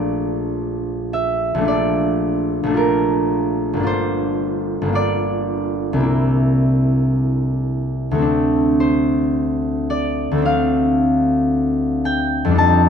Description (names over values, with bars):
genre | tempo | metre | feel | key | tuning
classical, solo harp piece | 55 BPM | 4/4 | rubato | unclear | A4 = 440 Hz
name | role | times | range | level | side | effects
concert harp | solo | 0.0-12.9 s | G1 to A5 | -16 LUFS | equal | none
room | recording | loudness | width
moderate stone room reverb, RT60 1.1 s | minimal, uncompressed stereo recording | -16 LUFS | side -7 dB against mid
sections
0.0-12.9 A section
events
none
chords
0.0 Bbmaj7; 3.9 Gm7; 6.1 C9; 8.2 Dm7